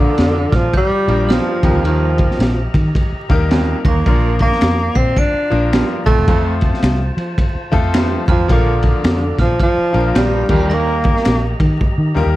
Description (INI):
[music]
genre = uptempo 1960s-style soul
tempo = 108 BPM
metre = 4/4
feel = swing 61% on 8ths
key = Bb major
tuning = A4 = 439 Hz
[part]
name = mellow tenor saxophone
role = melody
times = 0.0-11.6 s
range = D3 to D4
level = -18 LUFS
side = equal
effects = none
[part]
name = glockenspiel with hard plastic mallets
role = second line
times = 0.0-11.6 s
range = D6 to D7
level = -32 LUFS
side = right 5 dB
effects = none
[part]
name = bright concert grand piano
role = accompaniment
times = 0.0-12.4 s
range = F3 to Bb4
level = -22 LUFS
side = left 4 dB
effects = none
[part]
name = percussive tonewheel organ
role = sustained chords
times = 0.0-12.4 s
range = F4 to Bb5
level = -30 LUFS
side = equal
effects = fast rotary speaker, overdrive
[part]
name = vintage muted fingered electric bass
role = bass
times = 0.0-12.3 s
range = E1 to F3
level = -18 LUFS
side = equal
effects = none
[part]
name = crunchy breakbeat drum kit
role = drums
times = 0.2-12.0 s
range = crash cymbal, kick drum, ride cymbal, snare drum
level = -17 LUFS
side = equal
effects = none
[part]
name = raspy baritone saxophone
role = riff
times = 1.3-11.0 s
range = Eb2 to Bb2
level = -24 LUFS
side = right 8 dB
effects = none
[part]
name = finger snaps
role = percussion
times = 4.6-11.4 s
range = none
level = -30 LUFS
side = left 7 dB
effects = none
[sound]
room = light reverb, small room reverb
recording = dark, warm production, vinyl crackle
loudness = -13 LUFS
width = side -16 dB against mid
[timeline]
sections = 0.0-12.4 A section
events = drum fill 11.8-12.4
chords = 0.0 Bb; 1.6 Eb; 4.1 Bb; 6.3 F; 8.5 Bb; 10.4 Eb